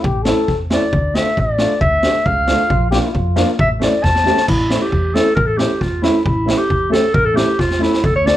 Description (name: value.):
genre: klezmer.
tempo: 135 BPM.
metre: 2/4.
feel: straight.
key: A phrygian dominant.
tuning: A4 = 439 Hz.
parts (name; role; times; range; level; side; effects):
warm trombone; second line; 0.0-0.6, 2.7-3.5 s; E4 to A4; -22 LUFS; left 4 dB; none.
upright bass; bass; 0.0-8.3 s; A1 to F2; -21 LUFS; equal; none.
street-band drum kit; drums; 0.0-8.4 s; crash cymbal, kick drum, snare drum; -20 LUFS; equal; none.
dark upright piano; accompaniment; 0.3-8.4 s; A3 to G4; -20 LUFS; right 1 dB; none.
mellow clarinet; melody; 0.7-8.4 s; E4 to A5; -17 LUFS; equal; plate reverb.
room: moderate studio reverb, RT60 0.6 s.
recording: dark, warm production.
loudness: -13 LUFS.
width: side -13 dB against mid.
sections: 0.0-4.5 A section; 4.5-8.4 B section.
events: clarinet solo 0.0-4.5; drum fill 4.0-4.5, 7.6-8.0.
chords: 0.0 A; 0.9 Dm; 2.7 Bb; 3.6 A.